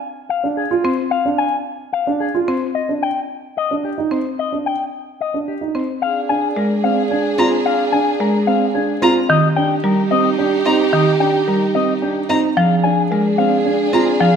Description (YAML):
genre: classical, minimalist pattern music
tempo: 110 BPM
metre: 3/4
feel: straight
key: Bb mixolydian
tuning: A4 = 439 Hz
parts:
  - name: electric guitar with an envelope filter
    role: melody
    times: 0.3-14.4 s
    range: G4 to Ab5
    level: -21 LUFS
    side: left 6 dB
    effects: none
  - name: dark baby grand piano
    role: arpeggios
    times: 0.4-14.1 s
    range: C4 to F4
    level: -21 LUFS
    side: right 5 dB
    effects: none
  - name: buzzing marimba with hard mallets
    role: accompaniment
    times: 0.8-14.4 s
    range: Eb3 to C4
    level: -20 LUFS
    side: equal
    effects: none
  - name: mellow French horn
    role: second line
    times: 6.0-14.4 s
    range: G4 to Ab4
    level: -21 LUFS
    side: right 5 dB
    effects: none
  - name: warm symphonic violin section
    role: sustained chords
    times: 6.0-14.4 s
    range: D4 to Ab4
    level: -24 LUFS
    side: left 2 dB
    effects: none
  - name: rich violin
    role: arpeggios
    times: 7.4-14.0 s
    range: Bb5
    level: -23 LUFS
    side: left 3 dB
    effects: none
room: moderate scoring stage reverb, RT60 1.6 s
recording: none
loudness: -15 LUFS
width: side -7 dB against mid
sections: 0.0-6.0 A section; 6.0-14.4 A section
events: none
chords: 0.0 Csus24; 2.8 Eb6; 6.0 Bb7 (rootless); 9.3 Eb6; 12.6 Bb7 (rootless)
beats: 0.02 0.57 | 1.11 1.66 2.21 | 2.75 3.30 3.84 | 4.39 4.93 5.48 | 6.02 6.57 7.11 | 7.66 8.21 8.75 | 9.30 9.84 10.39 | 10.93 11.48 12.02 | 12.57 13.11 13.66 | 14.21